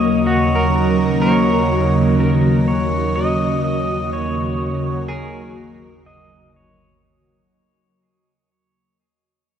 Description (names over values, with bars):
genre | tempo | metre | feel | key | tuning
ambient | 62 BPM | 4/4 | straight | unclear | A4 = 440 Hz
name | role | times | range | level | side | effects
pedal steel guitar | melody | 0.0-7.0 s | Bb4 to Eb5 | -23 LUFS | equal | ping-pong delay
evolving wavetable pad | sustained chords | 0.0-7.1 s | Eb2 to Bb4 | -16 LUFS | equal | ensemble chorus, built-in reverb, phaser
glass harmonica | texture | 0.0-7.1 s | Eb5 to Eb6 | -34 LUFS | left 2 dB | none
clean electric guitar | arpeggios | 0.3-7.5 s | Gb4 to Bb4 | -25 LUFS | right 1 dB | tremolo, ping-pong delay
room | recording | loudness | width
wet cathedral reverb, RT60 5.3 s | dark, warm production | -15 LUFS | side -8 dB against mid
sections
0.0-7.0 A section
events
fade-out 1.9-7.0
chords
0.0 Gb/Eb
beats
0.27 1.22 2.18 | 3.15 4.11 5.08 6.06